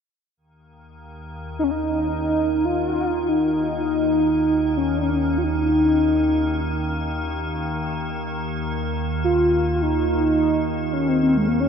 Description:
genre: world meditative, free-time meditation music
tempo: free time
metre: none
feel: none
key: unclear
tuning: A4 = 441 Hz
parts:
  - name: icy glass pad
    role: drone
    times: 1.0-11.7 s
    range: Eb2 to Eb3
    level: -25 LUFS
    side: equal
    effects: chorus, built-in reverb
  - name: warm velvety synth lead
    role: melody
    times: 1.6-11.7 s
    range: Ab3 to F4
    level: -20 LUFS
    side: equal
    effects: chorus, tape echo
room: wet huge ambient reverb, RT60 7.3 s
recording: none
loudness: -19 LUFS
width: side -7 dB against mid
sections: 0.4-11.7 A section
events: none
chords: none

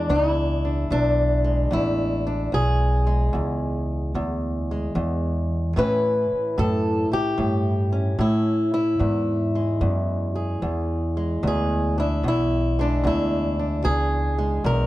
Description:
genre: acoustic country blues, solo or duo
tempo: 74 BPM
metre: 4/4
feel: swing 67% on 8ths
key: E mixolydian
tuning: A4 = 440 Hz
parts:
  - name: fingerpicked old ladder-braced acoustic guitar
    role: melody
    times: 0.0-14.9 s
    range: E2 to B4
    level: -23 LUFS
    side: equal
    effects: plate reverb
  - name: upright bass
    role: bass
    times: 0.0-14.9 s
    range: A1 to A2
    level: -24 LUFS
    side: equal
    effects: none
room: moderate booth ambience, RT60 0.2 s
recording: none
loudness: -20 LUFS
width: side -16 dB against mid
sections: 0.0-14.9 A section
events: none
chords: 0.0 E7; 5.8 A7; 9.0 E7

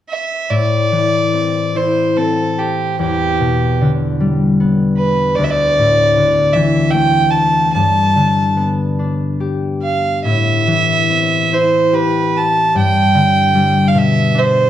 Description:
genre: celtic folk, Celtic slow air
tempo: 49 BPM (dotted quarters)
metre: 6/8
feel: uneven beats, rubato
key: A minor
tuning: A4 = 437 Hz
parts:
  - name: rich fiddle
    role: melody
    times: 0.1-14.7 s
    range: G4 to A5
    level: -15 LUFS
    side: right 2 dB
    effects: none
  - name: concert harp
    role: accompaniment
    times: 0.5-14.7 s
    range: D2 to G4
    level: -15 LUFS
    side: left 2 dB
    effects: none
room: moderate scoring stage reverb, RT60 1.9 s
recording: dark, warm production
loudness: -12 LUFS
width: side -11 dB against mid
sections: 0.5-14.7 A section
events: none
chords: 0.0 N.C.; 0.5 Am; 3.0 Em7; 5.4 Dsus2; 7.7 G; 10.3 Am7; 12.8 G6

